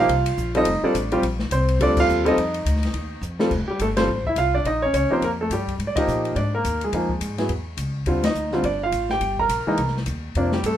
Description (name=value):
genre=jazz piano trio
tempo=210 BPM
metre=4/4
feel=swing 59% on 8ths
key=unclear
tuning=A4 = 438 Hz
part: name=clear grand piano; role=melody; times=0.0-10.8 s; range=C3 to Bb5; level=-21 LUFS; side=right 1 dB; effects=none
part: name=upright bass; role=bass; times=0.0-10.8 s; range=F1 to Bb2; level=-26 LUFS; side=equal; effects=none
part: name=open jazz drum kit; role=drums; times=0.1-10.7 s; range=crash cymbal, hi-hat, kick drum, ride cymbal, snare drum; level=-30 LUFS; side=left 3 dB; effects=none
room=light reverb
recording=minimal, uncompressed stereo recording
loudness=-20 LUFS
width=side -11 dB against mid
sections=0.0-3.5 A section; 3.5-10.8 B section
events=band accent 1.9, 3.9, 5.9, 8.2; drum fill 3.2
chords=0.1 Cm7; 0.7 F13; 1.2 Bb69; 2.4 F7(no3); 3.5 Fadd9; 4.6 Eb9; 5.8 Absus2; 6.9 Fm7; 7.5 Dbm; 8.1 Ebmaj9#11; 9.2 Gm; 9.8 Cm